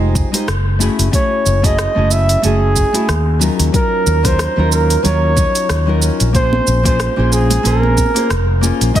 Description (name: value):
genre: sunset chillout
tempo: 92 BPM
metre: 4/4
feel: swing 56% on 16ths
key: Bb minor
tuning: A4 = 440 Hz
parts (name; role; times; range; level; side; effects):
- nylon-string guitar; accompaniment; 0.0-9.0 s; Gb3 to Db5; -19 LUFS; moving between left 7 dB and right 4 dB; auto-pan, low-pass filter, tape echo
- fretless electric bass; bass; 0.0-8.9 s; F1 to Eb2; -15 LUFS; equal; none
- electronic kick drum; drums; 0.2-9.0 s; none; -17 LUFS; equal; studio reverb
- smooth R&B drum kit; drums; 0.2-9.0 s; cabasa, hi-hat, rim click; -22 LUFS; right 2 dB; studio reverb, soft clipping on snare
- mellow flugelhorn; melody; 1.1-9.0 s; Ab4 to Fb5; -18 LUFS; right 1 dB; tape echo
- congas; percussion; 6.5-8.1 s; none; -23 LUFS; right 2 dB; none
room: light reverb, small room ambience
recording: dense, heavily limited modern master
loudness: -12 LUFS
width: side -11 dB against mid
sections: 0.0-9.0 A section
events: none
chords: 0.0 Fm9; 0.8 Gbm9; 3.4 Ebm9; 6.3 Bbm9